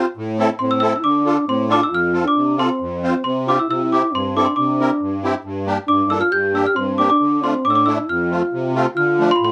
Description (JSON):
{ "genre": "klezmer", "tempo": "136 BPM", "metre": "2/4", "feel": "straight", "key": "F major", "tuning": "A4 = 440 Hz", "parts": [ { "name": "trombone with bucket mute", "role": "second line", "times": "0.0-9.5 s", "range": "C4 to G4", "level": "-22 LUFS", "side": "equal", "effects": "none" }, { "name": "musette accordion", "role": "accompaniment", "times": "0.0-9.5 s", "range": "F2 to C5", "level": "-24 LUFS", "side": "equal", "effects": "none" }, { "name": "worn celesta", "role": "melody", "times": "0.6-9.5 s", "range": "B5 to G6", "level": "-22 LUFS", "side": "equal", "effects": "none" } ], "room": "light reverb", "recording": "none", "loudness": "-18 LUFS", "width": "mono", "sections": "0.0-1.9 A section; 1.9-9.0 B section", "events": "none", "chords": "0.2 Am; 1.0 Dm; 1.9 F; 3.7 C; 5.4 Gm; 7.2 Dm; 8.1 F; 9.0 Dm", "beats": "| 0.16 0.60 | 1.04 1.48 | 1.93 2.37 | 2.81 3.25 | 3.69 4.13 | 4.57 5.01 | 5.45 5.89 | 6.33 6.77 | 7.21 7.65 | 8.09 8.53 | 8.97 9.41" }